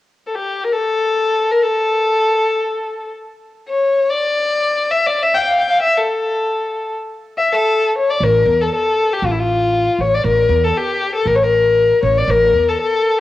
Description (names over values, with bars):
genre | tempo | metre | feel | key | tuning
Arabic maqam ensemble | free time | none | none | A maqam hijaz | A4 = 440 Hz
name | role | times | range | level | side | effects
dark violin | melody | 0.3-13.2 s | E4 to G5 | -14 LUFS | left 2 dB | cassette tape
upright bass | bass | 8.2-12.7 s | A1 to E2 | -20 LUFS | right 2 dB | transformer saturation
room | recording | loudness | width
moderate spring reverb, RT60 2.5 s | home recording on cassette | -14 LUFS | side -14 dB against mid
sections
0.0-8.2 A section; 8.2-13.2 B section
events
none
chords
none